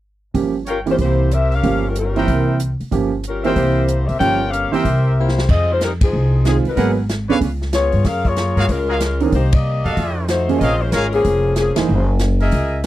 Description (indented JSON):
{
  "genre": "jazz, big band swing",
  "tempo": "187 BPM",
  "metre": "4/4",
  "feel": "swing 64% on 8ths",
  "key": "F minor",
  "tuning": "A4 = 440 Hz",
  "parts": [
    { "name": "warm upright piano", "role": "accompaniment", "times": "0.3-11.9 s", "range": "D3 to Bb4", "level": "-19 LUFS", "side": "right 6 dB", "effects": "none" },
    { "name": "upright bass", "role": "bass", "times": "0.3-12.9 s", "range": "F1 to G2", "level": "-18 LUFS", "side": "equal", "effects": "none" },
    { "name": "swinging big-band drum kit", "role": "drums", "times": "0.3-12.9 s", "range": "crash cymbal, hi-hat, kick drum, ride cymbal, snare drum", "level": "-21 LUFS", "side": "equal", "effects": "none" },
    { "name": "mellow saxophone section", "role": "melody", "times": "0.7-12.1 s", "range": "F3 to G5", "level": "-20 LUFS", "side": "left 3 dB", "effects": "none" },
    { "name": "bright trumpet section", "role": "stabs", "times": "0.7-12.8 s", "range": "Gb4 to G5", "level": "-23 LUFS", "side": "equal", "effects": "slapback echo" }
  ],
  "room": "light reverb",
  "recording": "dry, close 1970s-style studio recording, faint mains hum",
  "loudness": "-15 LUFS",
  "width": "side -14 dB against mid",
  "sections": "0.3-5.5 A section; 5.5-12.9 B section",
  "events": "drum fill 5.2-5.5; band accent 6.0, 9.5, 11.7",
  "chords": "0.3 Gm7b5; 1.0 C7; 1.6 Gm7b5; 2.3 C7; 2.9 Gm7b5; 3.6 C7; 4.2 Gm7b5; 4.8 C7; 5.5 Fm7; 6.8 Abm9; 7.4 Db7; 8.0 Gbmaj9; 9.3 Cm9; 10.0 F7b9; 10.6 Bbm7; 11.9 Gb13"
}